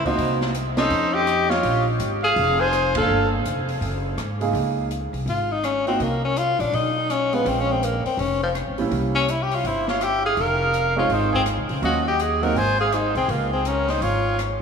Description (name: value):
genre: jazz, small-group swing and bop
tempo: 165 BPM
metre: 4/4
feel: swing 63% on 8ths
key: Db major from 4.5 s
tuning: A4 = 440 Hz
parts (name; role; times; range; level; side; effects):
- clear tenor saxophone; melody; 0.0-14.4 s; F3 to C5; -22 LUFS; left 3 dB; diffuse ambient delay
- clear trumpet; second line; 0.0-3.3, 9.7-14.4 s; F4 to Ab5; -26 LUFS; right 3 dB; none
- clear grand piano; accompaniment; 0.0-12.5 s; Db3 to A4; -28 LUFS; right 5 dB; none
- upright bass; bass; 0.0-14.6 s; F1 to Ab2; -26 LUFS; equal; none
- open jazz drum kit; drums; 0.1-14.5 s; hi-hat, kick drum, ride cymbal, rim click, snare drum; -34 LUFS; equal; none
room: moderate huge ambient reverb, RT60 4.4 s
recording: dreamy mix soaked in reverb, studio reverb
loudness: -19 LUFS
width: side -6 dB against mid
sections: 0.0-4.5 A section; 4.5-14.6 B section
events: band accent 2.9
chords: 0.2 Cm7b5; 0.9 F7b13; 1.6 Bbsus2; 3.1 Gm9; 3.8 Gbadd9; 4.5 Db6; 6.0 Bbmadd9; 6.7 Cbadd9; 7.5 Bbm7; 8.9 C7b9; 10.4 Fm7; 11.8 Ebm7; 12.6 Ab; 13.3 Db6